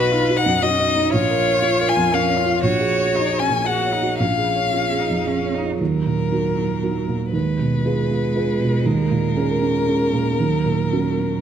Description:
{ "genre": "neoclassical piano and strings", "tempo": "117 BPM", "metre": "3/4", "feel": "rubato", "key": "Eb minor", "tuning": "A4 = 440 Hz", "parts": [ { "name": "rich violin", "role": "melody", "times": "0.0-11.4 s", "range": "Bb4 to Ab5", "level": "-22 LUFS", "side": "left 5 dB", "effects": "none" }, { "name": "rich cello", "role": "second line", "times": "0.0-11.4 s", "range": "Gb3 to Gb4", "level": "-25 LUFS", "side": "right 4 dB", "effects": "none" }, { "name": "felt-muted upright piano", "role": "accompaniment", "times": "0.0-11.4 s", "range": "Bb1 to D#5", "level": "-20 LUFS", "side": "right 3 dB", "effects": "none" } ], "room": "moderate scoring stage reverb, RT60 1.4 s", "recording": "none", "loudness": "-17 LUFS", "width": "side -8 dB against mid", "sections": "0.0-5.8 A section; 5.8-11.4 B section", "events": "none", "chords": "0.0 B; 1.1 Bbm; 2.6 Gbadd9/Bb; 4.2 Bbm7; 5.8 Ebm; 7.3 Fdim/Eb; 8.9 Bbm7/Eb; 10.4 Gb/Eb", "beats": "0.11 0.61 | 1.12 1.62 2.12 | 2.63 3.14 3.67 | 4.20 4.73 5.26 | 5.80 6.31 6.82 | 7.33 7.85 8.35 | 8.85 9.36 9.87 | 10.39 10.92" }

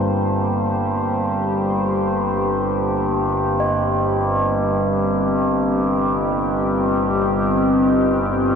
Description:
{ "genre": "dark ambient drone", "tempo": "free time", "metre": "none", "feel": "none", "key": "unclear", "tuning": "A4 = 440 Hz", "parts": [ { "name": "deep dark ambient pad", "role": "sustained chords", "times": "0.0-8.6 s", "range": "Bb3 to Eb5", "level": "-21 LUFS", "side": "left 1 dB", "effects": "chorus, built-in reverb" }, { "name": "overtone-sweeping drone", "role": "drone", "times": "0.0-8.6 s", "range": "G1 to G2", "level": "-20 LUFS", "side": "equal", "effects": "chorus, built-in reverb" }, { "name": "bronze singing bowl", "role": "texture", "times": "0.0-8.6 s", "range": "C5 to Eb5", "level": "-30 LUFS", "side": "right 1 dB", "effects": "stereo widening" } ], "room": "wet plate reverb, RT60 2.6 s", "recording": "dreamy mix soaked in reverb", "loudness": "-17 LUFS", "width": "side -6 dB against mid", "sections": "0.0-8.6 A section", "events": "none", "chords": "0.0 Gm; 3.6 Cm", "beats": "free time" }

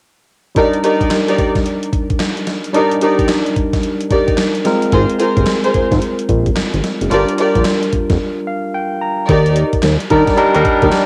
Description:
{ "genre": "R&B, new jack swing", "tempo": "110 BPM", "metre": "4/4", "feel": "swing 63% on 16ths", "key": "Eb major", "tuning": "A4 = 436 Hz", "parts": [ { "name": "barky tine electric piano", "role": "accompaniment", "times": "0.6-11.1 s", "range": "G3 to Bb5", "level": "-20 LUFS", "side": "equal", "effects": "cassette tape" }, { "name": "warm studio string section", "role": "stabs", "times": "0.6-11.0 s", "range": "Eb4 to D5", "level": "-19 LUFS", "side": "equal", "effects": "cassette tape, analog delay" }, { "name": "gated 80s digital drum machine", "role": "drums", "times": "0.6-11.1 s", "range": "handclaps, hi-hat, kick drum, snare drum", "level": "-21 LUFS", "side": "equal", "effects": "gated reverb, gated reverb snare, cassette tape" }, { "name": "fat analog bass", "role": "bass", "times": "4.9-10.9 s", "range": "F1 to Eb3", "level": "-17 LUFS", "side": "equal", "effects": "none" } ], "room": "moderate spring reverb, RT60 1.3 s", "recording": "home recording on cassette", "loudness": "-15 LUFS", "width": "mono", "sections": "0.6-9.3 A section; 9.3-11.1 B section", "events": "break 8.2-9.3; tine electric piano fill 8.2-9.3", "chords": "0.6 Ebmaj7; 4.7 Ab69; 7.1 Gm7; 9.3 Ebmaj7", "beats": "| 0.56 1.11 1.65 2.20 | 2.74 3.29 3.83 4.38 | 4.92 5.47 6.02 6.56 | 7.11 7.65 8.20 8.74 | 9.29 9.83 10.38 10.93" }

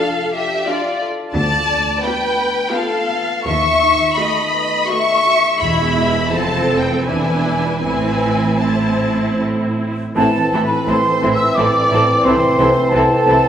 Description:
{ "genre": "classical, slow romantic movement for symphony orchestra", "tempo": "76-89 BPM", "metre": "3/4", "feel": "rubato", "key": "A minor", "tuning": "A4 = 439 Hz", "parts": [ { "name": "warm symphonic violin section", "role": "melody", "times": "0.0-13.5 s", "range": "A4 to C#6", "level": "-19 LUFS", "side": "left 2 dB", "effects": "none" }, { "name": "warm symphonic violin section", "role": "second line", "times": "0.0-13.4 s", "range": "E4 to E5", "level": "-22 LUFS", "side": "left 1 dB", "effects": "none" }, { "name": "rich symphonic viola section", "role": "accompaniment", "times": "0.0-13.4 s", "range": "E3 to A4", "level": "-23 LUFS", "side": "right 2 dB", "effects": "none" }, { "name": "concert harp", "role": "arpeggios", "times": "0.0-13.5 s", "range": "A2 to C6", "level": "-25 LUFS", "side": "left 2 dB", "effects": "none" }, { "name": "rich symphonic cello section", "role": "bass", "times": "1.3-13.3 s", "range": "D2 to C3", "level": "-22 LUFS", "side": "right 2 dB", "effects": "none" }, { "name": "rich symphonic double bass section", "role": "bass", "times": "1.3-13.3 s", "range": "E1 to D#2", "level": "-26 LUFS", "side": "right 2 dB", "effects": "none" }, { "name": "timpani", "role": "percussion", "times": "5.6-6.3 s", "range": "E2", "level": "-29 LUFS", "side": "equal", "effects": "none" }, { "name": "bright clarinet", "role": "second line", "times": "10.2-13.5 s", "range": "C4", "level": "-24 LUFS", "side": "equal", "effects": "none" }, { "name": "small flute group", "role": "second line", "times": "10.2-13.5 s", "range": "A5 to E6", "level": "-16 LUFS", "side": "right 1 dB", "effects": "none" }, { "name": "mellow bassoon", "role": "accompaniment", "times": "10.2-13.5 s", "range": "E3", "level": "-19 LUFS", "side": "right 1 dB", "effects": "none" }, { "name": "mellow French horn section", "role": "sustained chords", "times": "10.2-12.5 s", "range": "E3 to C4", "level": "-24 LUFS", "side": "left 2 dB", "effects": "none" } ], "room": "wet recital hall reverb, RT60 1.8 s", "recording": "recorded in a church or concert hall", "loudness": "-14 LUFS", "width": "side -9 dB against mid", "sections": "0.0-10.2 A section; 10.2-13.5 B section", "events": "none", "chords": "0.0 Dm/F; 1.4 Bm7b5/D; 3.5 B7/D#; 5.6 E; 6.3 F; 7.1 E7; 7.9 Am; 12.3 Am/C", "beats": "0.00 0.68 | 1.37 2.06 2.75 | 3.49 4.20 4.91 | 5.63 6.33 7.08 | 7.86 8.64 9.42 | 10.19 10.89 11.58 | 12.26 12.93" }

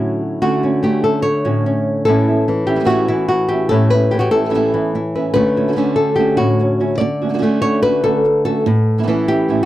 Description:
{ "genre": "flamenco", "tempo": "146 BPM", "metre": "4/4", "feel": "straight", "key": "unclear", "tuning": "A4 = 440 Hz", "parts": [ { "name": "flamenco guitar", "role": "melody", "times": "0.0-9.7 s", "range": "A2 to D5", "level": "-14 LUFS", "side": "left 1 dB", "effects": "none" }, { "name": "flamenco guitar", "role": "stabs", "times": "0.0-9.7 s", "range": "A2 to F#4", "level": "-20 LUFS", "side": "right 4 dB", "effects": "none" } ], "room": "light reverb", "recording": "dry, close 1970s-style studio recording", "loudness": "-14 LUFS", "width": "side -14 dB against mid", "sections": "0.0-9.7 A section", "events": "none", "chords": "0.0 Dmaj7; 2.1 Aadd9; 5.4 Dmaj7; 8.7 Aadd9", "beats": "0.01 | 0.42 0.83 1.25 1.66 | 2.07 2.48 2.89 3.30 | 3.72 4.13 4.54 4.95 | 5.36 5.78 6.19 6.60 | 7.01 7.42 7.84 8.25 | 8.66 9.08 9.49" }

